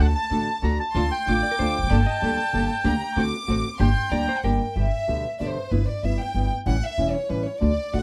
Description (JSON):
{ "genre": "tango", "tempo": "189 BPM", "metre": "3/4", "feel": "rubato", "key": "G minor, G major from 4.8 s", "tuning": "A4 = 443 Hz", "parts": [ { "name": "bandoneon", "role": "melody", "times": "0.0-4.4 s", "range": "G5 to Bb5", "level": "-28 LUFS", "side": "equal", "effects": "none" }, { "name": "warm chamber violin section", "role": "second line", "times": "0.0-8.0 s", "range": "B4 to D6", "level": "-32 LUFS", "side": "equal", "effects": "none" }, { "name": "nylon-string guitar", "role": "accompaniment", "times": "0.0-8.0 s", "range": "B2 to A4", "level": "-29 LUFS", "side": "equal", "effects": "none" }, { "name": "clear studio string section", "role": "stabs", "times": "0.0-4.6 s", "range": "Bb3 to A4", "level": "-40 LUFS", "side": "equal", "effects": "none" }, { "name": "upright bass", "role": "bass", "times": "0.0-8.0 s", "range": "E1 to D2", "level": "-27 LUFS", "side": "equal", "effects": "none" }, { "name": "hollow-body jazz guitar", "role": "second line", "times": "1.4-4.7 s", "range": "Bb4 to Eb5", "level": "-35 LUFS", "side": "equal", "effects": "none" } ], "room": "little or no reverb", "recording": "close, detailed microphones", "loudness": "-24 LUFS", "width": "mono", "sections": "0.0-4.8 A section; 4.8-8.0 B section", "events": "violin section solo 4.8-8.0", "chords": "0.0 D; 0.9 Dm; 1.9 Gmadd9; 2.8 Gm/D; 3.2 D7; 3.8 Gm; 4.8 G; 5.7 Em/G; 6.7 A7" }